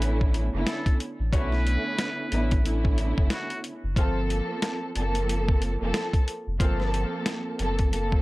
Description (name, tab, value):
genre	hip hop, boom-bap hip-hop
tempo	91 BPM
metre	4/4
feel	swing 60% on 16ths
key	unclear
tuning	A4 = 440 Hz
part	trumpet with metal mute	melody	0.0-3.6 s	F#4 to B4	-35 LUFS	equal	high-pass filter, low-pass filter, analog delay
part	warm studio string section	accompaniment	0.0-8.2 s	D3 to A4	-30 LUFS	right 1 dB	cassette tape, high-pass filter, low-pass filter
part	warm sub bass	bass	0.0-8.2 s	F1 to B1	-27 LUFS	equal	none
part	boom bap sampler-style drum kit	drums	0.0-8.2 s	hi-hat, kick drum, snare drum	-25 LUFS	equal	none
part	mellow horn section	stabs	1.3-7.0 s	A3 to C#5	-37 LUFS	left 4 dB	high-pass filter, low-pass filter, analog delay
room	little or no reverb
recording	none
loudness	-24 LUFS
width	side -20 dB against mid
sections	0.0-8.2 A section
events	none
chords	0.0 Bm11; 4.0 Gm11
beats	0.01 0.67 | 1.33 1.99 2.65 3.30 | 3.96 4.62 5.28 5.94 | 6.60 7.26 7.92